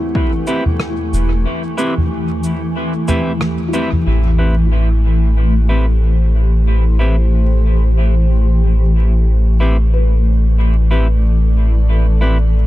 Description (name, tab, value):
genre	ambient dub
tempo	92 BPM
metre	4/4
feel	swing 58% on 16ths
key	A minor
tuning	A4 = 440 Hz
part	granular cloud pad	sustained chords	0.0-12.7 s	E3 to D5	-21 LUFS	equal	built-in reverb
part	felt-muted upright piano	arpeggios	0.0-12.7 s	C4 to B4	-28 LUFS	left 3 dB	dub echo
part	clean electric guitar	stabs	0.5-12.4 s	C4 to B4	-24 LUFS	equal	low-pass filter, dub echo
part	soft-mallet drum kit	drums	0.5-12.4 s	cabasa, rim click, toms	-22 LUFS	equal	low-pass filter on toms, low-pass filter on snare, low-pass filter on perc, low-pass filter on room, dub echo
part	soft dub sub bass	bass	1.1-12.7 s	E1 to A1	-12 LUFS	equal	tube saturation
room	small room ambience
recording	dark, warm production, vinyl crackle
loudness	-12 LUFS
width	side -16 dB against mid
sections	0.0-4.1 A section; 4.1-12.7 B section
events	band accent 3.4-3.7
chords	0.0 Am7